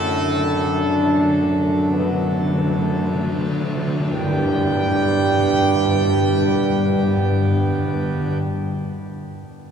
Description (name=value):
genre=classical, ceremonial fanfare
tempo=39-49 BPM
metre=4/4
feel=straight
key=G major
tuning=A4 = 438 Hz
part: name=bright trumpet section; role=melody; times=0.0-8.4 s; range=A4 to G5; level=-26 LUFS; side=right 1 dB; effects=none
part: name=clear trombone section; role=sustained chords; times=0.0-8.4 s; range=A2 to G3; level=-27 LUFS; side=right 5 dB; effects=none
part: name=dark French horn section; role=sustained chords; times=0.0-8.4 s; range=A3 to D4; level=-25 LUFS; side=left 1 dB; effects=none
part: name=pipe organ, full organ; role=sustained chords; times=0.0-8.4 s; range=F#3 to A4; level=-27 LUFS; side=equal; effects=none
part: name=clear tuba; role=bass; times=0.0-8.4 s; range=F#2 to G2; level=-24 LUFS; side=right 2 dB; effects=none
part: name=timpani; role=percussion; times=0.0-8.3 s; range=G2 to D3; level=-23 LUFS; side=left 1 dB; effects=none
part: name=tam-tam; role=percussion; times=4.1-8.4 s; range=none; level=-35 LUFS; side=left 1 dB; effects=none
room=wet cathedral reverb, RT60 4.6 s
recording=heard from further back in the room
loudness=-17 LUFS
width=side -7 dB against mid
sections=0.0-4.1 A section; 4.1-9.7 B section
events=timpani fill 0.0-4.1; slowing down 0.0-4.1; band accent 4.1-5.6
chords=0.0 D/F#; 4.1 G